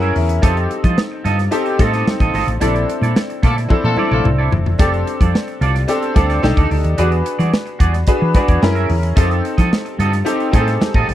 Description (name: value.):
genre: polished 1980s jazz-funk pop.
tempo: 110 BPM.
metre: 4/4.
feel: straight.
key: F major.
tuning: A4 = 441 Hz.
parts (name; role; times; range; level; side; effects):
clear concert grand piano; accompaniment; 0.0-11.1 s; C4 to Gb5; -20 LUFS; left 2 dB; analog chorus.
clean electric guitar; riff; 0.0-11.1 s; D#4 to Fb5; -23 LUFS; right 5 dB; analog chorus.
woody fretless electric bass; bass; 0.0-11.1 s; E1 to F3; -17 LUFS; equal; analog chorus.
modern studio drum kit; drums; 0.0-11.1 s; hi-hat, kick drum, snare drum, toms; -16 LUFS; equal; none.
congas; percussion; 0.2-11.1 s; none; -30 LUFS; right 3 dB; none.
clear horn section; second line; 3.4-4.3 s; A3 to A4; -22 LUFS; left 4 dB; none.
room: studio reverb.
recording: dry, close 1970s-style studio recording.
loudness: -14 LUFS.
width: side -12 dB against mid.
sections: 0.0-11.1 A section.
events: grand piano fill 0.0-0.4; band accent 2.6-4.8; drum fill 3.7-4.8.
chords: 0.4 F7; 2.6 Bbmaj9#11; 4.8 F6; 6.4 B7alt; 7.0 E9; 8.6 Gb9; 9.2 F7.